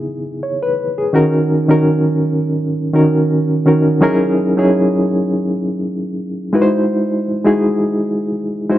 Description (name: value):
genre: soul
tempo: 83 BPM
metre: 4/4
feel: swing 54% on 16ths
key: unclear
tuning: A4 = 440 Hz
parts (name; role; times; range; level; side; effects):
- reed electric piano; solo; 0.0-8.8 s; C#3 to C#5; -13 LUFS; equal; fast tremolo
room: moderate echo chamber reverb, RT60 2.1 s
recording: dark, warm production, nothing above 10.4 kHz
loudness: -13 LUFS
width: side -13 dB against mid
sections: 0.0-8.8 A section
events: none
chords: 0.0 C#m9; 1.2 D#m7; 4.0 F#13; 6.5 G#7b13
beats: 0.44 | 1.15 1.87 2.59 3.31 | 4.03 4.75 5.47 6.19 | 6.91 7.63 8.35